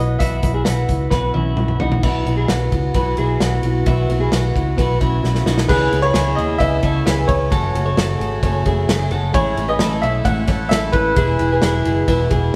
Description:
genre	jangly indie pop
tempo	132 BPM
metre	4/4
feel	straight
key	unclear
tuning	A4 = 436 Hz
part	bright upright piano	melody	0.0-1.5, 5.7-12.3 s	B4 to F#5	-24 LUFS	equal	tape echo
part	fingerpicked steel-string acoustic guitar	accompaniment	0.0-12.6 s	F#2 to B4	-29 LUFS	equal	none
part	twelve-string electric guitar	arpeggios	0.0-12.6 s	B3 to E5	-25 LUFS	equal	spring reverb
part	vintage muted fingered electric bass	bass	0.0-12.5 s	E1 to D#2	-22 LUFS	equal	none
part	loose indie drum kit	drums	0.2-12.4 s	crash cymbal, hi-hat, kick drum, ride cymbal, snare drum, toms	-24 LUFS	equal	none
part	clear woodwind section	sustained chords	2.0-12.6 s	B2 to F#4	-30 LUFS	equal	none
room	moderate stone room reverb, RT60 1.4 s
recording	band playing live in one room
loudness	-18 LUFS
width	mono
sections	0.0-2.0 A section; 2.0-5.7 B section; 5.7-12.6 C section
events	drum fill 1.1-2.0, 5.2-5.7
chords	0.0 Bsus4; 5.7 C#m7; 7.5 F#madd9; 9.3 Amaj7; 11.2 E

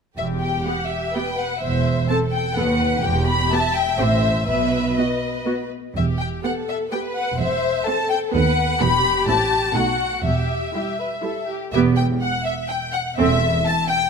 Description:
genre	quick classical-period movement for string orchestra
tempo	125 BPM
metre	3/4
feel	rubato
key	E minor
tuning	A4 = 440 Hz
part	warm studio violin section	melody	0.2-14.1 s	D#5 to B5	-23 LUFS	left 3 dB	none
part	rich studio violin section	second line	0.2-14.0 s	F#4 to A5	-26 LUFS	left 3 dB	none
part	warm studio cello section	bass	0.2-13.6 s	D#2 to B2	-25 LUFS	right 2 dB	none
part	warm studio double bass section	bass	0.2-13.6 s	E1 to D#2	-25 LUFS	right 3 dB	none
part	warm studio viola section	accompaniment	0.7-13.4 s	G3 to A4	-26 LUFS	right 4 dB	none
room	moderate concert hall reverb, RT60 1.8 s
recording	close, detailed microphones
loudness	-18 LUFS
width	side -6 dB against mid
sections	0.2-11.7 A section; 11.7-14.1 A section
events	none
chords	0.2 Em; 1.6 Am7/E; 2.6 B7/D#; 3.0 Em; 4.0 Am; 4.5 B; 6.0 Em; 7.4 Am/E; 8.3 B7/D#; 8.8 Em; 9.3 Am; 9.8 B7; 10.2 Em; 13.2 Emadd11

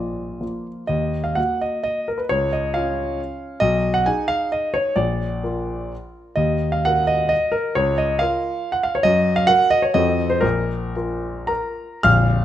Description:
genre	classical, romantic triple-time dance for piano with dotted rhythms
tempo	100-148 BPM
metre	3/4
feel	rubato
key	Eb minor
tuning	A4 = 439 Hz
part	warm concert grand piano	solo	0.0-12.4 s	Bb0 to F6	-18 LUFS	equal	none
room	moderate recital hall reverb, RT60 1.3 s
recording	close, detailed microphones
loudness	-18 LUFS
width	side -11 dB against mid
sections	0.9-12.0 A section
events	none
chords	0.0 Bb; 0.9 Ebm; 2.3 Dbadd9; 3.6 Abm/Cb; 5.0 Bb; 6.4 Ebm; 7.8 Bbm/Db; 9.0 Gb6; 9.9 F7b9; 10.4 Bb5

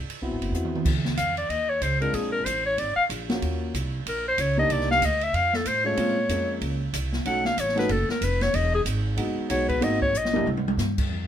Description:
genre	jazz, small-group swing and bop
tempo	187 BPM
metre	4/4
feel	swing 61% on 8ths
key	Db major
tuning	A4 = 440 Hz
part	upright bass	bass	0.0-11.3 s	E1 to Bb2	-29 LUFS	right 1 dB	none
part	open jazz drum kit	drums	0.1-11.2 s	crash cymbal, hi-hat, kick drum, ride cymbal, snare drum, toms	-30 LUFS	right 1 dB	none
part	warm concert grand piano	accompaniment	0.2-10.5 s	Ab3 to G4	-28 LUFS	equal	none
part	clear clarinet	melody	1.2-10.5 s	Ab4 to Gb5	-24 LUFS	left 2 dB	none
room	light reverb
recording	minimal, uncompressed stereo recording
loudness	-22 LUFS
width	side -10 dB against mid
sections	0.9-11.1 A section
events	drum fill 0.5-0.9, 10.1-10.8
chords	0.0 Ab7#9b13 (rootless); 0.9 Dbadd9; 2.1 Bb7; 3.4 Ebm7; 4.7 Cm7; 5.3 F; 6.0 Bbm7; 7.3 Cb7; 8.5 Emaj7; 9.8 Ab7; 10.5 C5

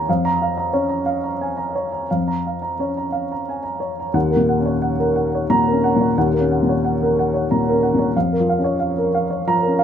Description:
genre	neoclassical minimalist piano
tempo	90 BPM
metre	3/4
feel	rubato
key	Eb minor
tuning	A4 = 440 Hz
part	dark upright piano	solo	0.0-9.8 s	Eb2 to Bb5	-17 LUFS	equal	none
room	light reverb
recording	none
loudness	-17 LUFS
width	side -8 dB against mid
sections	0.0-4.1 A section; 4.1-9.8 B section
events	none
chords	0.1 Bbm/F; 4.1 Ebm7; 8.1 Bbm/F

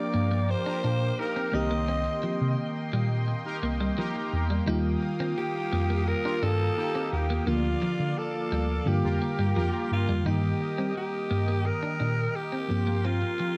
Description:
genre	pop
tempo	86 BPM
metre	4/4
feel	straight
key	unclear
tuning	A4 = 441 Hz
part	breathy alto saxophone	melody	0.0-13.6 s	F4 to Eb5	-34 LUFS	equal	delay
part	FM electric piano with soft pad layer	accompaniment	0.0-13.6 s	D3 to G4	-34 LUFS	equal	chorus
part	brassy analog pad	sustained chords	0.0-13.6 s	Bb3 to Eb6	-40 LUFS	equal	chorus
part	clean electric guitar	riff	0.1-13.5 s	F3 to Eb4	-38 LUFS	equal	lush chorus
part	mellow tine electric piano	bass	0.1-13.2 s	C2 to G3	-31 LUFS	equal	lush chorus
part	analog synth brass	stabs	0.7-10.1 s	Bb3 to Bb4	-40 LUFS	equal	chorus, delay
room	moderate scoring stage reverb, RT60 1.8 s, digital ambience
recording	dark, warm production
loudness	-28 LUFS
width	mono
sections	0.0-10.3 A section; 10.3-13.6 B section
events	none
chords	0.0 Gm7; 1.5 Cm7; 4.7 Ebadd9; 7.5 Bb/D; 8.9 Gm7; 10.3 Eb/G; 12.7 C7sus4/G

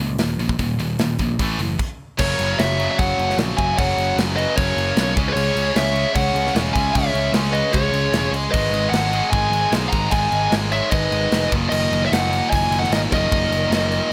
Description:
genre	heavy metal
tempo	151 BPM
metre	4/4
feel	straight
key	unclear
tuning	A4 = 440 Hz
part	heavy high-gain guitar	riff	0.0-14.1 s	Eb2 to Db4	-29 LUFS	equal	distortion
part	high-gain distorted guitar	riff	0.0-14.1 s	Eb2 to Db4	-28 LUFS	equal	distortion
part	picked electric bass	bass	0.0-14.0 s	Eb1 to Db2	-26 LUFS	equal	none
part	tight metal drum kit	drums	0.2-14.0 s	crash cymbal, hi-hat, kick drum, snare drum	-26 LUFS	equal	none
part	high-gain lead guitar	melody	2.2-14.1 s	Cb5 to Bb5	-24 LUFS	equal	distortion
part	bluesy overdriven lead guitar	second line	2.2-14.1 s	Ab4 to Gb5	-32 LUFS	equal	distortion
room	light reverb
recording	none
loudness	-20 LUFS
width	mono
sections	0.0-2.2 A section; 2.2-14.1 B section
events	stop 1.8-2.2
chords	0.0 Eb5; 1.4 A5; 1.8 N.C.; 2.2 Gb; 5.2 Dbm; 8.5 Abm; 11.5 Ebm/Gb

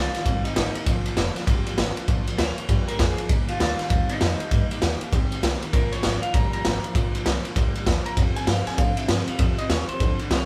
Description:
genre	rockabilly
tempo	197 BPM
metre	4/4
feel	swing 63% on 8ths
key	Bb mixolydian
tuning	A4 = 444 Hz
part	electric guitar through a small old amp	melody	0.0-10.5 s	Eb4 to Bb5	-33 LUFS	equal	none
part	picked steel-string acoustic guitar	accompaniment	0.0-10.5 s	Bb2 to Bb4	-38 LUFS	equal	none
part	electric guitar through a small old amp	riff	0.0-10.5 s	F2 to C4	-36 LUFS	equal	none
part	upright bass	bass	0.0-10.5 s	F1 to A2	-30 LUFS	equal	none
part	raw garage drum kit	drums	0.1-10.4 s	kick drum, ride cymbal, snare drum	-25 LUFS	equal	none
room	little or no reverb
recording	band playing live in one room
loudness	-23 LUFS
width	mono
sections	0.0-10.5 A section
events	clean electric guitar solo 0.0-10.5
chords	0.0 Eb; 0.9 Bb; 3.3 Eb; 5.7 Bb; 8.2 F

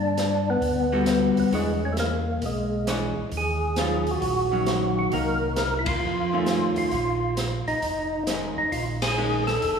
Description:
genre	soul jazz organ trio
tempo	133 BPM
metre	4/4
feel	swing 66% on 8ths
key	unclear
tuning	A4 = 441 Hz
part	percussive tonewheel organ	melody	0.0-9.8 s	G#3 to Bb4	-25 LUFS	equal	slow rotary speaker, chorus vibrato
part	mellow tonewheel organ	bass	0.0-9.8 s	F1 to G2	-30 LUFS	equal	slow rotary speaker
part	open jazz drum kit	drums	0.2-9.8 s	hi-hat, kick drum, ride cymbal, snare drum	-32 LUFS	equal	none
part	archtop guitar, miked and amplified	accompaniment	0.9-9.4 s	Eb3 to C#5	-28 LUFS	left 1 dB	none
room	wet concert hall reverb, RT60 2.4 s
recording	recorded in a church or concert hall, small room reverb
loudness	-22 LUFS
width	side -6 dB against mid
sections	0.0-9.8 A section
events	band accent 5.8, 8.9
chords	0.0 Gmaj9; 1.5 E6; 3.3 Ebm9; 5.1 Cm7b5; 6.0 F7b13; 6.9 Bbm7

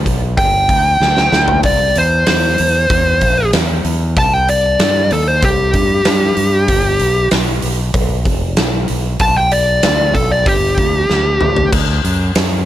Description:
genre	blues rock power trio and southern rock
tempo	95 BPM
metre	4/4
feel	straight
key	G major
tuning	A4 = 438 Hz
part	growling fingered electric bass	bass	0.0-12.7 s	F1 to G2	-17 LUFS	equal	overdrive
part	huge arena drum kit	drums	0.1-12.5 s	crash cymbal, hi-hat, kick drum, snare drum, toms	-17 LUFS	equal	none
part	fuzz lead guitar	melody	0.4-11.7 s	G4 to A5	-14 LUFS	equal	distortion, plate reverb
room	light reverb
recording	none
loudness	-11 LUFS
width	side -13 dB against mid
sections	0.0-12.7 A section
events	lead electric guitar solo 0.0-12.7; drum fill 1.0-1.6, 11.1-11.7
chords	0.0 G; 1.6 C; 4.2 C5; 6.7 G; 11.7 D

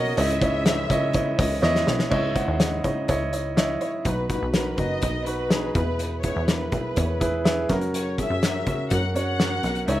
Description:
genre	piano-driven pop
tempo	124 BPM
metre	4/4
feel	straight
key	unclear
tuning	A4 = 440 Hz
part	warm symphonic violin section	melody	0.0-10.0 s	B4 to F#5	-31 LUFS	left 2 dB	none
part	dark concert grand piano	accompaniment	0.0-10.0 s	G#2 to F#5	-26 LUFS	right 1 dB	slapback echo
part	dark studio string section	sustained chords	0.0-4.0 s	C#3 to F#4	-34 LUFS	equal	none
part	plucky analog bass	bass	0.0-10.0 s	F#1 to F#2	-28 LUFS	equal	none
part	loose indie drum kit	drums	0.0-10.0 s	crash cymbal, hi-hat, kick drum, snare drum	-26 LUFS	left 1 dB	none
room	little or no reverb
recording	none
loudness	-21 LUFS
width	side -14 dB against mid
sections	0.0-2.1 A section; 2.1-4.1 B section; 4.1-10.0 C section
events	drum fill 1.6-2.1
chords	0.2 C#madd9; 4.1 B; 5.8 E; 7.7 F#

